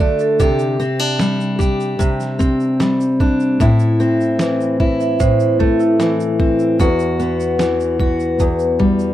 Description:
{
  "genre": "acoustic pop",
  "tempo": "75 BPM",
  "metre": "4/4",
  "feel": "straight",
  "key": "unclear",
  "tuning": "A4 = 442 Hz",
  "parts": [
    { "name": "vibraphone with medium hard mallets", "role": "second line", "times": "0.0-6.8 s", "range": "E4 to E5", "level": "-20 LUFS", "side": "right 10 dB", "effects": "none" },
    { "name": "fingerpicked steel-string acoustic guitar", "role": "accompaniment", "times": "0.0-9.1 s", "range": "E2 to G4", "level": "-15 LUFS", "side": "left 1 dB", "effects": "none" },
    { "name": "trip hop sampler-style drum kit", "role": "drums", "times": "0.0-9.1 s", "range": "kick drum, shaker, snare drum", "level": "-19 LUFS", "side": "right 1 dB", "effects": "none" }
  ],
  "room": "small room ambience",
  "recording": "dry, close 1970s-style studio recording",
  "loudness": "-14 LUFS",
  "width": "side -13 dB against mid",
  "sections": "0.0-9.1 A section",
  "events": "none",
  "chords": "0.4 Csus2; 3.6 Am; 6.8 Emadd9"
}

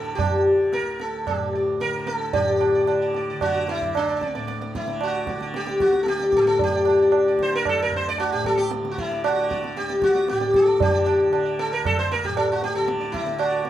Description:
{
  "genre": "indian classical, Hindustani",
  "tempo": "114 BPM",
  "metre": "4/4",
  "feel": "straight",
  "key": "D major",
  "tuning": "A4 = 440 Hz",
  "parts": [
    { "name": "sitar", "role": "melody", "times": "0.0-13.7 s", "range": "D4 to D5", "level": "-21 LUFS", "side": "left 1 dB", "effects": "none" },
    { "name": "tanpura", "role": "drone", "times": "0.0-13.7 s", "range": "D2 to D3", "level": "-33 LUFS", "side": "left 1 dB", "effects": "none" },
    { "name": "tabla", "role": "percussion", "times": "0.2-13.7 s", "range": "none", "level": "-26 LUFS", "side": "right 3 dB", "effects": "none" }
  ],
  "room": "light reverb",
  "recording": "band playing live in one room",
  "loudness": "-20 LUFS",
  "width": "side -12 dB against mid",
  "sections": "0.0-2.3 A section; 2.3-13.7 B section",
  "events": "speeding up 0.0-13.7",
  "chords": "none"
}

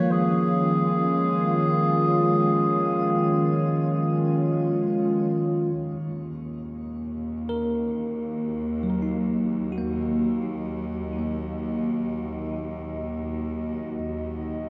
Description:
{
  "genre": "ambient",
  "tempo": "free time",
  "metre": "none",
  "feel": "none",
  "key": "Eb minor",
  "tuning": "A4 = 441 Hz",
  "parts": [
    { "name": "warm clarinet", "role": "melody", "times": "0.0-4.8 s", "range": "Ab4 to Db5", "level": "-29 LUFS", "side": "equal", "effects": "shimmer reverb, tape echo" },
    { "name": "warbly tape-like pad", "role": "sustained chords", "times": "0.0-14.7 s", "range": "Eb3 to Gb5", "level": "-27 LUFS", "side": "equal", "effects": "chorus, built-in reverb" },
    { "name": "bell-like tine electric piano", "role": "arpeggios", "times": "0.0-14.7 s", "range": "F3 to Bb4", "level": "-32 LUFS", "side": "equal", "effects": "tape echo" },
    { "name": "bright studio cello section", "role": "bass", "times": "5.7-14.7 s", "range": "Eb2", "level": "-38 LUFS", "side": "equal", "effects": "none" }
  ],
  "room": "wet concert hall reverb, RT60 2.2 s",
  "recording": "dark, warm production",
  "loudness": "-25 LUFS",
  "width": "mono",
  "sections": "0.0-5.7 A section; 5.7-14.7 B section",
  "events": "filter sweep on ambient pad 0.0-5.7, 5.7-14.7",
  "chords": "0.0 Db/Eb; 5.7 Ebm"
}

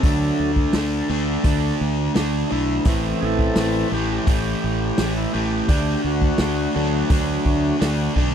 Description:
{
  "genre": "classic rock",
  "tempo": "85 BPM",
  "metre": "4/4",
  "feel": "straight",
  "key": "unclear",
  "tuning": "A4 = 440 Hz",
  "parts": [
    { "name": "tonewheel organ", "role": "sustained chords", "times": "0.0-8.1 s", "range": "E3 to A4", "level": "-27 LUFS", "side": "equal", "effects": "overdrive, slow rotary speaker" },
    { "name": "crunchy overdriven guitar", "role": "riff", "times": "0.0-8.3 s", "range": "A2 to D4", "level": "-25 LUFS", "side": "left 15 dB", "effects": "none" },
    { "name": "overdriven electric guitar", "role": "riff", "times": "0.0-8.3 s", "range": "A2 to D4", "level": "-25 LUFS", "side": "right 15 dB", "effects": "none" },
    { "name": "growling fingered electric bass", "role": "bass", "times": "0.0-8.3 s", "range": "A1 to D2", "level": "-25 LUFS", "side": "equal", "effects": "overdrive" },
    { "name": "vintage drum kit", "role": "drums", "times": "0.0-8.3 s", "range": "hi-hat, kick drum, snare drum", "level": "-20 LUFS", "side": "equal", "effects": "none" }
  ],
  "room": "little or no reverb",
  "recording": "dry, close 1970s-style studio recording",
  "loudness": "-18 LUFS",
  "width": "side -8 dB against mid",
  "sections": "0.0-8.3 A section",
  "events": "tonewheel organ solo 0.0-8.3",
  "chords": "0.0 D; 2.9 Am; 5.7 D"
}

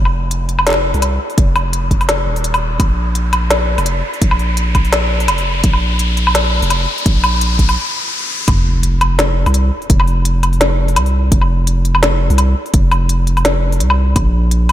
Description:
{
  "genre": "half-time drum and bass",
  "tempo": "169 BPM",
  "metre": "4/4",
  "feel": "swing 55% on 16ths, half-time",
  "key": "unclear",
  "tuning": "A4 = 441 Hz",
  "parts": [
    { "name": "long sustained 808-style bass", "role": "bass", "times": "0.0-14.7 s", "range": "Eb1 to C2", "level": "-15 LUFS", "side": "equal", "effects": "none" },
    { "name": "riser and sub drop", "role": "sound effects", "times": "0.0-9.9 s", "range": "none", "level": "-23 LUFS", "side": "left 2 dB", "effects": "none" },
    { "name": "organic electronic drum kit", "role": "drums", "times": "0.1-14.7 s", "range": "hi-hat, snare drum, woodblock", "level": "-17 LUFS", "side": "left 1 dB", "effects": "high-pass filter on hats, high-pass filter on perc, high-pass filter on snare, high-pass filter on room" },
    { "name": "electronic kick drum", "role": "drums", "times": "1.4-14.2 s", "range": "none", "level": "-13 LUFS", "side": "equal", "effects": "none" }
  ],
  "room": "light reverb",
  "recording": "none",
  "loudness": "-12 LUFS",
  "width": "side -12 dB against mid",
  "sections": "0.0-8.5 A section; 8.5-14.7 B section",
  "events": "build-up 0.0-8.5; riser 0.0-8.5; stop 7.8-8.5; drop 8.5-14.7; impact 8.5-9.9",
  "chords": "none"
}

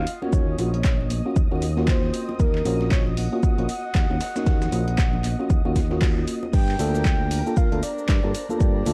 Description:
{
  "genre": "deep house",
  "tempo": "116 BPM",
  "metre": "4/4",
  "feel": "swing 59% on 16ths",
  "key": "unclear",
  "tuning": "A4 = 440 Hz",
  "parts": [
    { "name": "breathy flute-like synth lead", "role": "melody", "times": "0.0-8.9 s", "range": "Bb4 to G5", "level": "-34 LUFS", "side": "equal", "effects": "subtle chorus, analog delay" },
    { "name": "mellow FM electric piano", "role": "stabs", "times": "0.0-8.9 s", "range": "Bb3 to Bb4", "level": "-30 LUFS", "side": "equal", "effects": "chorus, sidechain pumping" },
    { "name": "fingered electric bass", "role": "bass", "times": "0.0-8.9 s", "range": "Bb1 to G2", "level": "-28 LUFS", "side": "equal", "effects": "tube saturation, sidechain pumping" },
    { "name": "analog string pad", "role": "texture", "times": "0.0-8.9 s", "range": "Bb4 to Bb6", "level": "-43 LUFS", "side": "equal", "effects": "ensemble chorus, sidechain pumping" },
    { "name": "dusty soul sampler-style drum kit", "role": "drums", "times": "0.1-8.9 s", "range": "hi-hat, shaker, snare drum", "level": "-44 LUFS", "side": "equal", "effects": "overdrive, sidechain pumping on perc, high-pass filter on perc, high-pass filter on snare, sidechain pumping on hats, high-pass filter on hats" },
    { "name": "punchy analog drum machine", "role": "drums", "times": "0.1-8.9 s", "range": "crash cymbal, handclaps, hi-hat, shaker", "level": "-36 LUFS", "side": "equal", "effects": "none" },
    { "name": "congas and bongos", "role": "percussion", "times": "0.2-8.9 s", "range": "none", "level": "-39 LUFS", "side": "equal", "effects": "none" },
    { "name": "electronic kick drum", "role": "drums", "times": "0.3-8.7 s", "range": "none", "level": "-23 LUFS", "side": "equal", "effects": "none" },
    { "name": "ethereal airy pad", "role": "texture", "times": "8.0-8.9 s", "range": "D4 to C5", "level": "-44 LUFS", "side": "equal", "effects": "none" }
  ],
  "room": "little or no reverb",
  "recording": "dry, gritty hardware recording, vinyl crackle",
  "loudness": "-22 LUFS",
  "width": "mono",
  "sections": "0.0-6.5 A section; 6.5-8.9 B section",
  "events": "band accent 6.0; drop 6.5-8.9",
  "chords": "0.0 Ebm9; 6.5 Gm9"
}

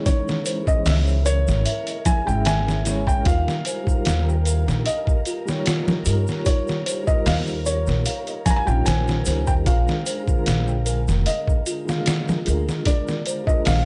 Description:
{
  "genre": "trip hop",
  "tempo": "75 BPM",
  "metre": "4/4",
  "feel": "swing 53% on 16ths",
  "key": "unclear",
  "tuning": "A4 = 442 Hz",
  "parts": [
    { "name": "felt-muted upright piano", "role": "melody", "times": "0.0-13.8 s", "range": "Db5 to Bb5", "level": "-30 LUFS", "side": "equal", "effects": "vintage 12-bit sampler grit, dub echo" },
    { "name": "felt-muted upright piano", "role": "accompaniment", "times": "0.0-13.8 s", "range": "D3 to F5", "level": "-31 LUFS", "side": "equal", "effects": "tremolo, tape echo" },
    { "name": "flickering grainy texture", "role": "texture", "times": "0.0-13.8 s", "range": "Bb4", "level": "-41 LUFS", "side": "equal", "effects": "built-in reverb" },
    { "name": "music box", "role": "arpeggios", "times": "0.1-13.8 s", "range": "D4 to F5", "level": "-34 LUFS", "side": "equal", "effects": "tape echo" },
    { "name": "trip hop sampler-style drum kit", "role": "drums", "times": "0.1-13.8 s", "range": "hi-hat, kick drum, snare drum", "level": "-25 LUFS", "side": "equal", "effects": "small room ambience" },
    { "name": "tube shaker and congas", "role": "percussion", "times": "0.1-13.8 s", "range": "none", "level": "-31 LUFS", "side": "equal", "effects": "none" },
    { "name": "upright bass", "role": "bass", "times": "0.9-13.8 s", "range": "F1 to G2", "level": "-23 LUFS", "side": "equal", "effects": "none" }
  ],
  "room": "small room ambience",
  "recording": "nothing above 10.6 kHz",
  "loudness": "-21 LUFS",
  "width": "mono",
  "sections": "0.0-13.8 A section",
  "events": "none",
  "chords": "0.0 Dbm; 3.3 Ebadd9; 9.7 Bb7"
}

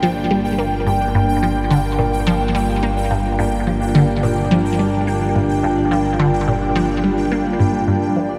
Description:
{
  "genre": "ambient, sequencer-driven space music",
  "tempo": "107 BPM",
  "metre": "4/4",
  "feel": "straight",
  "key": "G minor",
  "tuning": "A4 = 440 Hz",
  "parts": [
    { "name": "evolving wavetable pad", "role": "sustained chords", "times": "0.0-8.4 s", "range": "Bb3 to F4", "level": "-24 LUFS", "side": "equal", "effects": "phaser, built-in reverb" },
    { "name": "concert harp", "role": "arpeggios", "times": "0.0-8.4 s", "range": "G3 to D5", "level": "-28 LUFS", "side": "equal", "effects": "delay" },
    { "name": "resonant blip pluck", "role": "riff", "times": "0.0-8.4 s", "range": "G2 to Bb3", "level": "-22 LUFS", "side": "equal", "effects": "phaser, analog chorus, delay" },
    { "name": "analog drone", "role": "bass", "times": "0.0-8.4 s", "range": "G1", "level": "-26 LUFS", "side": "equal", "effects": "chorus" },
    { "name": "pulsing gated texture", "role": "texture", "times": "0.0-8.4 s", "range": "D5 to G5", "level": "-26 LUFS", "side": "equal", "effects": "chorus, built-in reverb" }
  ],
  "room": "wet huge ambient reverb, RT60 7.5 s",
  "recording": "dreamy mix soaked in reverb, cassette tape",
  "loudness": "-18 LUFS",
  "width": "mono",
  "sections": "0.0-8.4 A section",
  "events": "none",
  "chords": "0.0 Gm"
}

